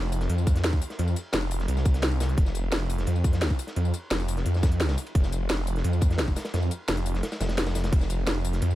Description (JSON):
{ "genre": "dark technical drum and bass", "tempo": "173 BPM", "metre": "4/4", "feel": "straight", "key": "unclear", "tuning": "A4 = 440 Hz", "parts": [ { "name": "snarling distorted saw bass", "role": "bass", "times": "0.0-8.8 s", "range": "F1 to F2", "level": "-26 LUFS", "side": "equal", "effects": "overdrive, sidechain pumping" }, { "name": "crunchy breakbeat drum kit", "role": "drums", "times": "0.1-8.7 s", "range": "ride cymbal, snare drum", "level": "-37 LUFS", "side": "equal", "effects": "high-pass filter on cymbals, high-pass filter on snare, high-pass filter on room" }, { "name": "drum and bass drum kit", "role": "drums", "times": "0.1-8.8 s", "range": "crash cymbal, hi-hat, ride cymbal, snare drum, tambourine", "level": "-31 LUFS", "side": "equal", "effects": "none" }, { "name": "electronic kick drum", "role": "drums", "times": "0.5-8.0 s", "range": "none", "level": "-23 LUFS", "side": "equal", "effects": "none" } ], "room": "small room ambience", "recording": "none", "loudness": "-23 LUFS", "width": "side -15 dB against mid", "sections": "0.0-8.8 A section", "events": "kick drops out 7.2-7.9", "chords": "none" }